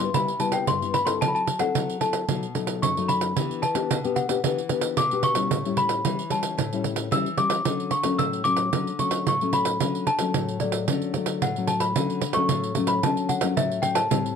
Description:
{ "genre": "samba and choro", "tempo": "112 BPM", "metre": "4/4", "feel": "straight", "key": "D major", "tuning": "A4 = 439 Hz", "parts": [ { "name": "small celesta", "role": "melody", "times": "0.0-14.4 s", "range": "D5 to E6", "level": "-26 LUFS", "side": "left 2 dB", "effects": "none" }, { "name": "nylon-string guitar", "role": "accompaniment", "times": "0.0-14.4 s", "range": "F#2 to A4", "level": "-27 LUFS", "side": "left 6 dB", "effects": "none" }, { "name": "pandeiro", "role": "percussion", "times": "0.1-14.4 s", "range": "none", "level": "-27 LUFS", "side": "right 6 dB", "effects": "none" } ], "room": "light reverb", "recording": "close, detailed microphones", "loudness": "-22 LUFS", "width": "side -6 dB against mid", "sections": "0.0-12.0 A section; 12.0-14.4 B section", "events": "none", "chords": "0.0 Cmaj7; 1.2 F#m7b5; 2.3 B7; 3.4 Em7; 5.5 A7; 7.7 Dmaj7" }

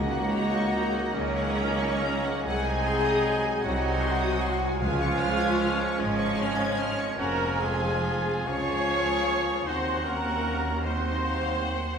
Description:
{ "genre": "classical, slow romantic movement for symphony orchestra", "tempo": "44-52 BPM (dotted quarters)", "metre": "6/8", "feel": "rubato", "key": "Db major", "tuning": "A4 = 442 Hz", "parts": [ { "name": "rich symphonic violin section", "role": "melody", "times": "0.0-12.0 s", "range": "Eb5 to Ab6", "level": "-37 LUFS", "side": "left 4 dB", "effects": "none" }, { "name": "clear oboe", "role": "second line", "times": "0.0-11.7 s", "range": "Gb5 to Bb5", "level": "-38 LUFS", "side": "right 2 dB", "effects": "none" }, { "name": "mellow hollow flute section", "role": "second line", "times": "0.0-11.7 s", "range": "Db5 to Db6", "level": "-36 LUFS", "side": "right 1 dB", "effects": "none" }, { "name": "warm clarinet", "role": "second line", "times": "0.0-11.8 s", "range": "F3 to F4", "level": "-36 LUFS", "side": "left 2 dB", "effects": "none" }, { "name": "warm symphonic violin section", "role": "second line", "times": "0.0-12.0 s", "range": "Db5 to Db6", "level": "-39 LUFS", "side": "left 2 dB", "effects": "none" }, { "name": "mellow bassoon", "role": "accompaniment", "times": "0.0-11.7 s", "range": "Eb3 to Gb3", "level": "-38 LUFS", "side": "right 2 dB", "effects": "none" }, { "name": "rich symphonic viola section", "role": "accompaniment", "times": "0.0-12.0 s", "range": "Db4 to Db5", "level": "-30 LUFS", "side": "right 1 dB", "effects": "none" }, { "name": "bright trombone section", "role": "sustained chords", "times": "0.0-12.0 s", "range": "Eb3 to C4", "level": "-40 LUFS", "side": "right 2 dB", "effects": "none" }, { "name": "mellow French horn section", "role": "sustained chords", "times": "0.0-12.0 s", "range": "Db3 to Db4", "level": "-36 LUFS", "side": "left 3 dB", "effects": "none" }, { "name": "warm trumpet", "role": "stabs", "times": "0.0-11.7 s", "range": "Ab3 to Ab4", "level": "-34 LUFS", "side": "equal", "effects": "none" }, { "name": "rich symphonic cello section", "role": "bass", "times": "0.0-12.0 s", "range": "C2 to Ab2", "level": "-33 LUFS", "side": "right 1 dB", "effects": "none" }, { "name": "rich symphonic double bass section", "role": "bass", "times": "0.0-12.0 s", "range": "F1 to Eb2", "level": "-32 LUFS", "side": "right 2 dB", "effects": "none" }, { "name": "timpani", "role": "percussion", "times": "0.0-6.0 s", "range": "Db3", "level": "-38 LUFS", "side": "left 2 dB", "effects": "none" } ], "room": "wet scoring stage reverb, RT60 2.0 s", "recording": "minimal, uncompressed stereo recording", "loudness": "-24 LUFS", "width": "side -6 dB against mid", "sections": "0.0-12.0 A section", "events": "none", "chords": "0.0 Ebm7/Db; 2.5 Ab7/C; 4.8 Db; 7.2 Db/F; 9.7 Cdim/Eb" }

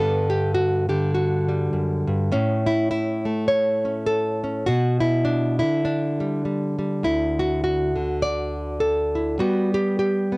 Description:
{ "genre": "folk, solo fingerstyle acoustic guitar", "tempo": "102 BPM", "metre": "4/4", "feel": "swing 58% on 8ths", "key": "unclear", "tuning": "A4 = 440 Hz", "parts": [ { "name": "nylon-string guitar", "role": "solo", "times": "0.0-10.4 s", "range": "D2 to D5", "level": "-20 LUFS", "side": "equal", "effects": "cassette tape" } ], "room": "light reverb", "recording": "home recording on cassette", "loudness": "-20 LUFS", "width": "side -26 dB against mid", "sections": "0.0-10.4 A section", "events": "none", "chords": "0.0 Gmaj7; 2.3 A; 4.7 G/B; 7.0 Dadd9; 9.4 G" }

